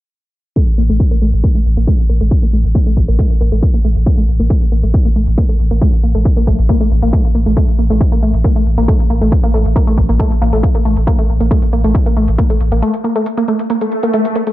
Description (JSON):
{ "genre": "driving peak-time techno", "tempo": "137 BPM", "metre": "4/4", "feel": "straight", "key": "unclear", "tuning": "A4 = 440 Hz", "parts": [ { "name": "analog pluck", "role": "riff", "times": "0.6-14.5 s", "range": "A3 to Bb3", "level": "-18 LUFS", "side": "left 1 dB", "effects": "chorus, tube saturation, sidechain pumping, ping-pong delay" }, { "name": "electronic hi-hat", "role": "drums", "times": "0.6-14.5 s", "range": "none", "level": "-45 LUFS", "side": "right 5 dB", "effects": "none" }, { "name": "electronic kick drum", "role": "drums", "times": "0.6-12.5 s", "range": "none", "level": "-12 LUFS", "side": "equal", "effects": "overdrive" }, { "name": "saturated sub bass", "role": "bass", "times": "0.8-12.8 s", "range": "A1", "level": "-14 LUFS", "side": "equal", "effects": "tube saturation, sidechain pumping, low-pass filter" }, { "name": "swell", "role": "sound effects", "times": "13.8-14.5 s", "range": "none", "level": "-18 LUFS", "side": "right 2 dB", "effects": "none" } ], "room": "digital ambience", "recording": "low-pass filter", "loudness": "-11 LUFS", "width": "side -15 dB against mid", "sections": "0.6-14.5 A section", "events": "filter sweep on synth arpeggio sound 0.6-14.5; filter sweep 0.6-14.5; break 12.8-14.5; swell 13.8-14.5", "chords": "none" }